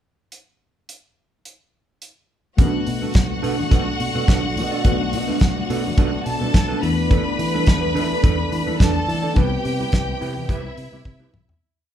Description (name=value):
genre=disco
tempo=106 BPM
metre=4/4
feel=straight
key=B phrygian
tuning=A4 = 439 Hz
part: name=damped 70s drum kit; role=drums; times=0.3-11.6 s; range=hi-hat, kick drum, snare drum, toms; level=-18 LUFS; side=equal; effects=none
part: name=clear studio string section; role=second line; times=2.6-11.6 s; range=E4 to B5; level=-26 LUFS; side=left 1 dB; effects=none
part: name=mellow electric guitar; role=accompaniment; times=2.6-11.5 s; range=D4 to D5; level=-28 LUFS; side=right 7 dB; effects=none
part: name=mellow tine electric piano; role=accompaniment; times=2.6-11.6 s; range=G3 to D5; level=-29 LUFS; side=left 8 dB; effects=none
part: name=dark French horn section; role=sustained chords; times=2.6-11.6 s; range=C3 to B4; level=-30 LUFS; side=right 3 dB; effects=none
part: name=fingered electric bass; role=bass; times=2.6-11.5 s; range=B1 to E3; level=-26 LUFS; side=equal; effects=none
part: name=congas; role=percussion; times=2.6-11.5 s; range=none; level=-32 LUFS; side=left 4 dB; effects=none
room=moderate large studio reverb, RT60 0.9 s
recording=band playing live in one room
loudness=-17 LUFS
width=side -10 dB against mid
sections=0.3-2.6 pickup bar; 2.6-11.6 verse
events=fade-out 9.4-11.6; drum fill 11.1-11.6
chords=0.3 N.C.; 2.6 Bm7; 6.8 E7sus4; 9.4 Cmaj7